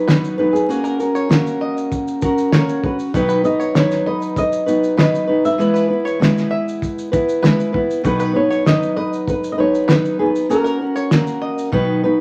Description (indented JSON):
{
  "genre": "acoustic pop",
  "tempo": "98 BPM",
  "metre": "4/4",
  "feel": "straight",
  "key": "B major",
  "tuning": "A4 = 440 Hz",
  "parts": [
    { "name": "flamenco guitar", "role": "melody", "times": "0.0-11.7 s", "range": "G#4 to E5", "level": "-24 LUFS", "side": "equal", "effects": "none" },
    { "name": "fingerpicked steel-string acoustic guitar", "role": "accompaniment", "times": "0.0-12.2 s", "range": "B2 to B4", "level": "-20 LUFS", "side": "equal", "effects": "none" },
    { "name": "bluegrass banjo", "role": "arpeggios", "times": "0.1-12.0 s", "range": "A#4 to E5", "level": "-31 LUFS", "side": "equal", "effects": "none" },
    { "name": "cloth-damped thuddy drum kit", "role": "drums", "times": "0.1-11.9 s", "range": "kick drum, shaker, snare drum", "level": "-20 LUFS", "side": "equal", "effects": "none" }
  ],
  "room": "moderate large studio reverb, RT60 1.0 s",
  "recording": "vinyl crackle",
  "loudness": "-17 LUFS",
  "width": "mono",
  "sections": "0.0-12.2 A section",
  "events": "drum fill 11.7-12.2",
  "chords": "0.0 B; 0.7 F#/A#; 3.1 B; 5.6 E; 8.0 B; 10.5 F#/A#"
}